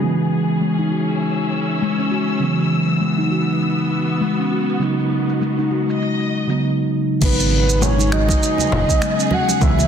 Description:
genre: organic downtempo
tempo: 100 BPM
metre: 4/4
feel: swing 58% on 16ths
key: G# minor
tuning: A4 = 441 Hz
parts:
  - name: muted felt-like synth keys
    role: accompaniment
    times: 0.0-9.9 s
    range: C#3 to D#4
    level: -21 LUFS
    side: right 3 dB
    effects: chorus, sidechain pumping, ping-pong delay
  - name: warm studio string section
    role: sustained chords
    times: 0.0-9.9 s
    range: D#3 to E6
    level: -26 LUFS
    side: equal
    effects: vintage 12-bit sampler grit, sidechain pumping, low-pass filter
  - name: steel tongue drum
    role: arpeggios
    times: 0.0-9.7 s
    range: G#3 to F#4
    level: -22 LUFS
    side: left 4 dB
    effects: low-pass filter, ping-pong delay
  - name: deep house drum kit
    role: drums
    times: 0.0-9.9 s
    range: congas, crash cymbal, finger snaps, shaker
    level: -23 LUFS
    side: left 1 dB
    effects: soft clipping on snare, low-pass filter on snare, low-pass filter on perc, low-pass filter on cymbals, low-pass filter on room
  - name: breathy flute-like synth lead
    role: melody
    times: 7.2-9.9 s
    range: B4 to F#5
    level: -21 LUFS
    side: right 1 dB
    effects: analog chorus, digital delay
  - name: smooth synth bass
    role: bass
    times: 7.2-9.9 s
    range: F#1 to C#2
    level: -19 LUFS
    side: equal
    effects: sidechain pumping
  - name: electronic kick drum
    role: drums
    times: 7.2-9.8 s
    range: none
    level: -19 LUFS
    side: equal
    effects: none
  - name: congas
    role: percussion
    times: 7.4-9.9 s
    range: none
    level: -26 LUFS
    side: right 4 dB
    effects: none
room: wet lush hall reverb, RT60 1.7 s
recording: dense, heavily limited modern master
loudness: -16 LUFS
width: side -8 dB against mid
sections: 0.0-7.2 A section; 7.2-9.9 B section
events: none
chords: 0.0 C#m; 4.8 B; 7.2 G#m7

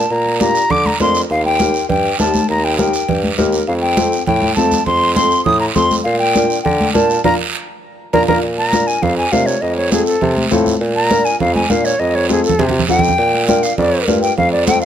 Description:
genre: latin, cumbia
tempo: 202 BPM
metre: 4/4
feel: straight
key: Bb major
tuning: A4 = 439 Hz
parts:
  - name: concert flute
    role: melody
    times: 0.0-14.8 s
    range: Ab4 to Eb6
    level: -17 LUFS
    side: left 1 dB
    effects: none
  - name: mellow bassoon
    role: bass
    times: 0.0-14.8 s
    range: Eb2 to D3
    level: -18 LUFS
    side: equal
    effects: none
  - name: guiro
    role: percussion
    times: 0.1-14.8 s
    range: none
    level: -24 LUFS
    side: right 6 dB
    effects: none
  - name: congas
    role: percussion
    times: 0.3-14.8 s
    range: none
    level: -20 LUFS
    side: right 2 dB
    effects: none
  - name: dark upright piano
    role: accompaniment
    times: 0.4-14.8 s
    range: C4 to Bb4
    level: -20 LUFS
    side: left 3 dB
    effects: none
room: light reverb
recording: close, detailed microphones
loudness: -12 LUFS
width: side -10 dB against mid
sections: 0.0-8.4 A section; 8.4-14.8 B section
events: band accent 7.2-8.4; drum fill 8.0-8.4, 12.3-13.2; flute solo 8.4-14.8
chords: 0.0 Bb; 1.3 Eb; 3.7 F; 6.1 Bb; 9.6 F; 10.8 Bb; 12.0 F; 13.2 Bb

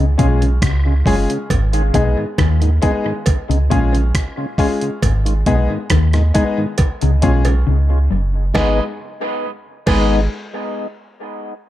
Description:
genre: dub reggae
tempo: 68 BPM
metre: 4/4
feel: straight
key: G# dorian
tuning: A4 = 441 Hz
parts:
  - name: tonewheel organ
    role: accompaniment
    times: 0.0-10.2 s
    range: G#2 to E#4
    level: -24 LUFS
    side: left 1 dB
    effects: chorus vibrato, slow rotary speaker, dub echo
  - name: mellow electric guitar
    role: riff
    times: 0.0-8.4 s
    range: F#2 to D#3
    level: -22 LUFS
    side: left 5 dB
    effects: none
  - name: warm sub bass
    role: bass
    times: 0.0-10.3 s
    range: F#1 to D#2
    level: -15 LUFS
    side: right 1 dB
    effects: none
  - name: clear grand piano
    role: stabs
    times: 0.2-10.2 s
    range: G#3 to G#4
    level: -22 LUFS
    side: left 2 dB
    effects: dub echo
  - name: dusty soul sampler-style drum kit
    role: drums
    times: 0.2-10.1 s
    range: crash cymbal, hi-hat, kick drum, rim click, snare drum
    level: -19 LUFS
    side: right 1 dB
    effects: none
  - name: cowbell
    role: percussion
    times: 1.5-10.3 s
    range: none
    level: -30 LUFS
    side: right 4 dB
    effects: dub echo
  - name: electric guitar at the edge of break-up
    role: accompaniment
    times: 8.6-10.2 s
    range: G#4 to D#5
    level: -27 LUFS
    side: right 5 dB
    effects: dub echo
room: light reverb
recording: none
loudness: -14 LUFS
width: side -14 dB against mid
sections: 0.0-8.6 A section; 8.6-11.7 B section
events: break 0.0-8.6; drums muted 7.7-8.6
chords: 0.0 C#; 1.5 G#m; 3.3 C#; 5.0 G#m; 6.8 C#; 8.6 G#m

